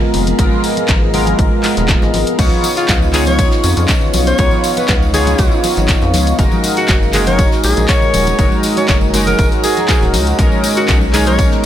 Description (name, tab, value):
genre	deep house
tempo	120 BPM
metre	4/4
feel	swing 53% on 16ths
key	unclear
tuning	A4 = 442 Hz
part	warm analog pad	sustained chords	0.0-11.7 s	B3 to C#6	-27 LUFS	equal	chorus, sidechain pumping
part	chorused polysynth	stabs	0.0-11.7 s	G#3 to C#5	-17 LUFS	equal	cassette tape, sidechain pumping, dub echo
part	congas	percussion	0.0-11.6 s	none	-25 LUFS	left 3 dB	none
part	warbly tape-like pad	texture	0.0-11.7 s	B3 to A#5	-24 LUFS	equal	chorus, built-in reverb, phaser, sidechain pumping
part	rubbery square bass	bass	0.1-11.5 s	D#1 to E#2	-17 LUFS	equal	sidechain pumping
part	punchy analog drum machine	drums	0.1-11.5 s	crash cymbal, handclaps, hi-hat	-20 LUFS	left 1 dB	none
part	soft brush drum kit	drums	0.1-11.6 s	hi-hat, ride cymbal, snare drum	-29 LUFS	right 2 dB	high-pass filter on cymbals, high-pass filter on hats, high-pass filter on snare, high-pass filter on room
part	electronic kick drum	drums	0.4-11.5 s	none	-15 LUFS	equal	none
part	tambourine	percussion	2.4-11.6 s	none	-26 LUFS	left 5 dB	none
part	breathy alto saxophone	melody	2.8-11.5 s	E#4 to C#5	-19 LUFS	equal	dub echo
room	light reverb, small room ambience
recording	none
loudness	-11 LUFS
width	side -11 dB against mid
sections	0.0-11.7 A section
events	none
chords	0.0 G#m69; 2.4 C#9; 6.4 F#69; 10.4 Bmaj13